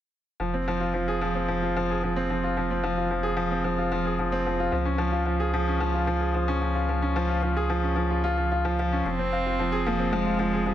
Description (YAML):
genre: piano and strings electronica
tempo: 111 BPM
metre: 4/4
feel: straight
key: F minor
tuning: A4 = 440 Hz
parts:
  - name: bright baby grand piano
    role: riff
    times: 0.4-10.7 s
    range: F3 to F5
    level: -25 LUFS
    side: equal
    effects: digital delay
  - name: warm sub bass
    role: bass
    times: 0.4-10.7 s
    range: F1 to Db2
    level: -30 LUFS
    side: equal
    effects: none
  - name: rich cello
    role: melody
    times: 9.1-10.7 s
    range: G3 to C4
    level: -27 LUFS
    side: right 2 dB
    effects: none
room: moderate scoring stage reverb, RT60 2.1 s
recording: none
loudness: -24 LUFS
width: side -12 dB against mid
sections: 0.4-10.7 A section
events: none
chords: 0.4 Fm; 4.7 Db; 9.1 Fm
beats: | 0.40 0.94 1.48 2.02 | 2.56 3.11 3.65 4.19 | 4.73 5.27 5.81 6.35 | 6.89 7.43 7.97 8.51 | 9.05 9.59 10.13 10.67